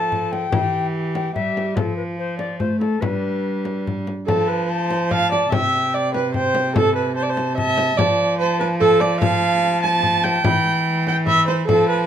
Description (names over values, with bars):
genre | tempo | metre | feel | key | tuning
classical, renaissance-style consort dance | 145 BPM | 3/4 | straight | unclear | A4 = 435 Hz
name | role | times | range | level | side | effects
mellow alto recorder | melody | 0.0-12.1 s | A4 to B5 | -25 LUFS | left 4 dB | none
warm viola | second line | 0.0-12.1 s | D4 to A5 | -20 LUFS | right 3 dB | none
rich cello | bass | 0.0-12.1 s | C3 to A3 | -23 LUFS | equal | none
frame drum | percussion | 0.1-11.9 s | none | -25 LUFS | left 3 dB | none
room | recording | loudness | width
light reverb | none | -17 LUFS | side -9 dB against mid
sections
0.0-4.3 A section; 4.3-12.1 A section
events
none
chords
0.0 F; 0.5 Em; 1.8 F; 3.0 G; 4.3 F; 5.5 C; 8.0 F; 10.5 Em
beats
0.11 | 0.52 0.94 1.35 | 1.76 2.18 2.60 | 3.02 3.44 3.86 | 4.27 4.69 5.10 | 5.51 5.92 6.34 | 6.75 7.16 7.57 | 7.98 8.39 8.80 | 9.21 9.63 10.04 | 10.45 10.86 11.28 | 11.69